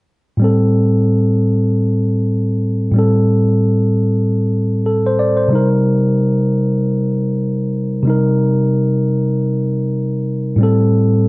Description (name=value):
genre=hip hop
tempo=free time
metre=none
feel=none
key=A minor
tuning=A4 = 440 Hz
part: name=mellow tine electric piano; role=solo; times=0.4-11.3 s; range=A2 to D5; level=-13 LUFS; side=equal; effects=none
room=moderate studio reverb, RT60 0.6 s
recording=dark, warm production, nothing above 10.9 kHz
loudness=-13 LUFS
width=side -23 dB against mid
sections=0.4-10.6 A section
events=none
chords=0.4 Am7; 5.5 Cm7; 10.6 Am7